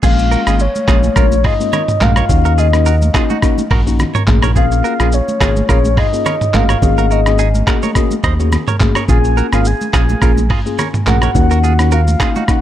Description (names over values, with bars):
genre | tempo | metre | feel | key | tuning
afrobeats | 106 BPM | 4/4 | swing 55% on 16ths | Bb minor | A4 = 440 Hz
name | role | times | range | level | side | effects
soft octave-layered synth lead | melody | 0.0-12.6 s | Db5 to Ab5 | -19 LUFS | left 2 dB | chorus, phaser, analog delay
tine electric piano | accompaniment | 0.0-12.6 s | Ab3 to Ab4 | -19 LUFS | left 5 dB | wide subtle chorus, analog delay
direct-recorded clean electric guitar | riff | 0.0-12.4 s | Eb4 to Eb5 | -23 LUFS | right 9 dB | analog delay
round analog bass | bass | 0.0-12.2 s | Ab1 to Eb2 | -14 LUFS | equal | none
lo-fi sampler-style drum kit | drums | 0.0-12.6 s | crash cymbal, handclaps, hi-hat, kick drum, rim click, shaker, toms | -15 LUFS | equal | none
congas | percussion | 0.0-12.5 s | none | -24 LUFS | right 2 dB | analog delay
room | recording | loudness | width
little or no reverb | echo-heavy mix | -11 LUFS | side -12 dB against mid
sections
0.0-12.6 A section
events
none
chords
0.0 Bbm7; 2.3 Ebm7; 4.3 Bbm7; 6.5 Ab9sus4; 9.1 Bbm7; 11.4 Ebm7